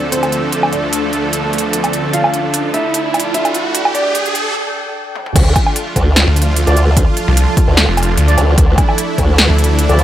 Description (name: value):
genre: heavy wobble dubstep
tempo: 149 BPM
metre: 4/4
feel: swing 53% on 16ths, half-time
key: D minor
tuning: A4 = 437 Hz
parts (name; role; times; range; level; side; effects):
- dark grand piano; melody; 0.0-4.5 s; C4 to F5; -20 LUFS; equal; low-pass filter, dub echo
- supersaw pad; sustained chords; 0.0-10.0 s; D2 to A4; -21 LUFS; right 1 dB; sidechain pumping
- riser; sound effects; 1.1-4.6 s; none; -22 LUFS; right 2 dB; none
- granular cloud pad; texture; 0.0-10.0 s; F3 to A5; -23 LUFS; equal; built-in reverb, sidechain pumping
- big-room dance drum kit; drums; 0.1-10.0 s; crash cymbal, hi-hat, snare drum, toms, woodblock; -16 LUFS; right 1 dB; none
- formant-sweep wobble bass; bass; 5.4-10.0 s; D2; -12 LUFS; equal; chorus, overdrive
- electronic kick drum; drums; 5.4-9.3 s; none; -13 LUFS; equal; none
- snarling distorted saw bass; bass; 6.3-9.9 s; F1 to D2; -12 LUFS; equal; distortion, overdrive
- mellow brass ensemble; stabs; 6.7-10.0 s; A3 to D5; -21 LUFS; right 2 dB; dub echo
room: light reverb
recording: high-pass filter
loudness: -11 LUFS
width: side -12 dB against mid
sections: 0.0-5.4 A section; 5.4-10.0 B section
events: build-up 0.0-5.4; filter sweep on grand piano 0.0-5.4; riser 1.1-4.6; break 4.6-5.4; drum fill 5.2; drop 5.4-10.0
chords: 0.0 Dm